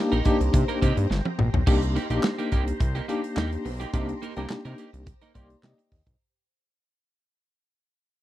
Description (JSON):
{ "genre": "early-eighties boogie funk", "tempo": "106 BPM", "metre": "4/4", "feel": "straight", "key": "C minor", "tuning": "A4 = 440 Hz", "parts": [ { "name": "tine electric piano", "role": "accompaniment", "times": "0.0-6.2 s", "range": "Bb3 to C6", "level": "-28 LUFS", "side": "left 2 dB", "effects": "medium tremolo" }, { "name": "phased string machine", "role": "sustained chords", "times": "0.0-6.2 s", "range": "G4 to Bb5", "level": "-38 LUFS", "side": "left 2 dB", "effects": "ensemble chorus, phaser" }, { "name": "electric guitar at the edge of break-up", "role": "riff", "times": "0.1-6.1 s", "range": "Bb3 to Bb4", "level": "-33 LUFS", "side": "right 4 dB", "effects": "analog chorus" }, { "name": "fat analog bass", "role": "bass", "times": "0.1-6.2 s", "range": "G1 to C3", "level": "-26 LUFS", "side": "equal", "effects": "none" }, { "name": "modern studio drum kit", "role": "drums", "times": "0.1-6.2 s", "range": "crash cymbal, handclaps, hi-hat, kick drum, snare drum, toms", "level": "-25 LUFS", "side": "equal", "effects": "none" } ], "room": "little or no reverb", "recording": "dry, close 1970s-style studio recording", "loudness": "-22 LUFS", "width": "side -14 dB against mid", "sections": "0.0-1.7 A section; 1.7-6.2 B section", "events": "drum fill 1.1-1.7; fade-out 1.7-6.2; tine electric piano fill 5.1-6.2", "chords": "0.0 Cm7", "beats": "0.54 1.10 | 1.67 2.24 2.80 3.37 | 3.93 4.50 5.07 5.63" }